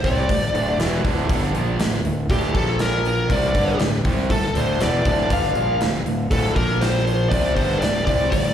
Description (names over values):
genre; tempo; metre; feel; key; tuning
hard rock; 120 BPM; 4/4; straight; D minor; A4 = 441 Hz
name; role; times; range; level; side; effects
distorted electric guitar; riff; 0.0-8.5 s; D2 to C4; -26 LUFS; right 7 dB; distortion, slapback echo
overdriven semi-hollow guitar; riff; 0.0-8.5 s; D2 to C4; -28 LUFS; left 8 dB; slapback echo
fuzz fingered electric bass; bass; 0.0-8.5 s; D1 to C2; -24 LUFS; equal; overdrive
gated 80s drum kit; drums; 0.0-8.4 s; hi-hat, kick drum, snare drum; -24 LUFS; equal; none
smooth overdriven lead guitar; melody; 0.1-8.5 s; G4 to F5; -23 LUFS; left 1 dB; slapback echo
room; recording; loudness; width
light reverb, small room ambience; live gig heard through the venue's PA, recital hall reverb; -18 LUFS; side -9 dB against mid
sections
0.0-8.5 A section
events
none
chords
0.0 Dm; 2.6 Bb5; 3.3 Dm; 6.6 Bb5; 7.3 D5